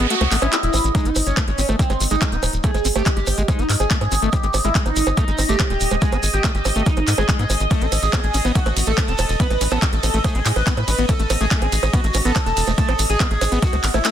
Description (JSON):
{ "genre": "psychedelic trance", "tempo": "142 BPM", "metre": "4/4", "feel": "straight", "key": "unclear", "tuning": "A4 = 441 Hz", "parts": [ { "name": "overtone-sweeping drone", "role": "sustained chords", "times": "0.0-14.1 s", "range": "Eb5", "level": "-28 LUFS", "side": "right 1 dB", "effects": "chorus, built-in reverb, sidechain pumping" }, { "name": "overdriven acid bass", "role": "riff", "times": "0.0-14.1 s", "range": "Ab3 to E4", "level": "-27 LUFS", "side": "moving between left 9 dB and right 8 dB", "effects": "auto-pan, vintage 12-bit sampler grit, sidechain pumping, ping-pong delay" }, { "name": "tight sequencer bass", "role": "bass", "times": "0.0-14.0 s", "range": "Eb1 to A2", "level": "-21 LUFS", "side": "equal", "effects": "none" }, { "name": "techno drum kit", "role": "drums", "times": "0.0-14.1 s", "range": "bongos, handclaps, hi-hat, ride cymbal", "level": "-24 LUFS", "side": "right 3 dB", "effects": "none" }, { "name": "shekere", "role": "percussion", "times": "0.0-14.1 s", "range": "none", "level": "-31 LUFS", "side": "right 2 dB", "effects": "none" }, { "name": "noise sweep", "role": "sound effects", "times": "0.0-0.9 s", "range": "none", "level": "-26 LUFS", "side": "right 4 dB", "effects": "none" }, { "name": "overdriven synth lead", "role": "melody", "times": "0.1-14.1 s", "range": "C4 to Cb5", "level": "-24 LUFS", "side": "right 1 dB", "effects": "distortion, chorus, phaser, vintage 12-bit sampler grit, sidechain pumping, ping-pong delay" }, { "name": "electronic kick drum", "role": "drums", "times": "0.9-13.7 s", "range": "none", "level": "-20 LUFS", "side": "equal", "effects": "none" } ], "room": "digital ambience", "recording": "dense, heavily limited modern master", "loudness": "-16 LUFS", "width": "side -10 dB against mid", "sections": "0.0-14.1 A section", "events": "noise sweep 0.0-0.9; kick drops out 0.1-0.9", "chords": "0.0 A5; 0.9 Ab5; 7.7 A5" }